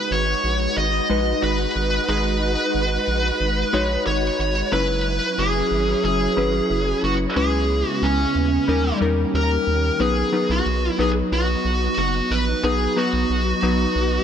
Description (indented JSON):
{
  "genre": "pop",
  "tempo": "91 BPM",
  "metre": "4/4",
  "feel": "straight",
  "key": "unclear",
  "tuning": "A4 = 439 Hz",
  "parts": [
    { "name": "high-gain lead guitar", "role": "melody", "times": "0.0-14.2 s", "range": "C#4 to D#5", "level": "-22 LUFS", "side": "right 1 dB", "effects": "distortion" },
    { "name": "glassy digital keys", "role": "accompaniment", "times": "0.0-14.2 s", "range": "F#3 to C#5", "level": "-25 LUFS", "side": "left 3 dB", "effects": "chorus" },
    { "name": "soft string machine", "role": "sustained chords", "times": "0.0-14.2 s", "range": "C#3 to B4", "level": "-26 LUFS", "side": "equal", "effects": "ensemble chorus" },
    { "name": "round analog bass", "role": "bass", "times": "0.1-14.2 s", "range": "F#1 to E2", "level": "-24 LUFS", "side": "equal", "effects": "none" }
  ],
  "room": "light reverb, digital ambience",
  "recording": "none",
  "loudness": "-18 LUFS",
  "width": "side -8 dB against mid",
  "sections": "0.0-10.0 A section; 10.0-14.2 B section",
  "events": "none",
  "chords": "0.0 G#m7; 4.7 F#7sus4; 7.4 C#m7; 8.7 D#7; 10.0 B"
}